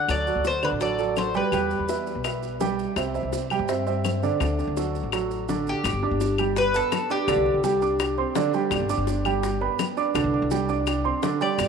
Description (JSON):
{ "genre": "latin, Cuban son and guajira", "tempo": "167 BPM", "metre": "4/4", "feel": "straight", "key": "G major", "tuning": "A4 = 440 Hz", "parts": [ { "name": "Cuban tres", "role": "melody", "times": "0.0-2.4, 5.7-8.5, 11.4-11.7 s", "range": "G4 to F#5", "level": "-25 LUFS", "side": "left 2 dB", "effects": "none" }, { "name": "warm baby grand piano", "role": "arpeggios", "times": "0.0-11.7 s", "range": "D3 to D6", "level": "-25 LUFS", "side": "right 6 dB", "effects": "tape echo" }, { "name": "upright bass", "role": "bass", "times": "0.1-11.7 s", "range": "G1 to G2", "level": "-30 LUFS", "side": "left 2 dB", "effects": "none" }, { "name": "bongos", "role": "percussion", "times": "0.1-11.7 s", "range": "none", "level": "-34 LUFS", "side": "left 12 dB", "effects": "none" }, { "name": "claves", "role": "percussion", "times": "0.1-11.7 s", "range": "none", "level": "-32 LUFS", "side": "left 14 dB", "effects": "none" }, { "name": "maracas", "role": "percussion", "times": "0.1-11.7 s", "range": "none", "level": "-43 LUFS", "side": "right 10 dB", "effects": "none" } ], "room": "wet plate reverb, RT60 3.4 s", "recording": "1960s-style stereo with parts hard left and right", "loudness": "-22 LUFS", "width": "side -6 dB against mid", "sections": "0.0-5.8 A section; 5.8-11.7 B section", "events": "none", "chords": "0.0 D; 1.5 Em; 3.0 C; 4.4 D; 5.8 G; 7.3 Csus2; 8.7 G; 10.2 Csus2", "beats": "| 0.09 0.45 0.81 1.17 | 1.53 1.89 2.25 2.61 | 2.97 3.33 3.69 4.05 | 4.41 4.76 5.12 5.49 | 5.84 6.20 6.56 6.92 | 7.28 7.64 8.00 8.36 | 8.72 9.07 9.43 9.79 | 10.15 10.51 10.87 11.23 | 11.59" }